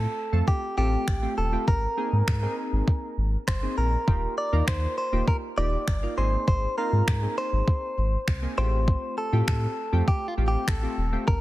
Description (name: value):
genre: dance-pop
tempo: 100 BPM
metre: 4/4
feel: straight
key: unclear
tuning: A4 = 440 Hz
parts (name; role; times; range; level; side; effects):
- direct-recorded clean electric guitar; melody; 0.0-11.4 s; F4 to D5; -29 LUFS; equal; none
- glassy digital keys; accompaniment; 0.0-11.3 s; A3 to Bb4; -33 LUFS; equal; chorus, sidechain pumping
- sub bass with octave; bass; 0.0-11.4 s; Eb1 to A2; -25 LUFS; equal; sidechain pumping
- smooth R&B drum kit; drums; 0.5-11.4 s; finger snaps, kick drum; -26 LUFS; equal; soft clipping on snare
room: light reverb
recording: dense, heavily limited modern master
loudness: -23 LUFS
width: side -16 dB against mid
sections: 0.0-11.4 A section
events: none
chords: 0.0 Fadd9; 1.7 Abadd9; 4.1 Ebadd9; 6.2 Abadd9; 8.6 Fadd9/A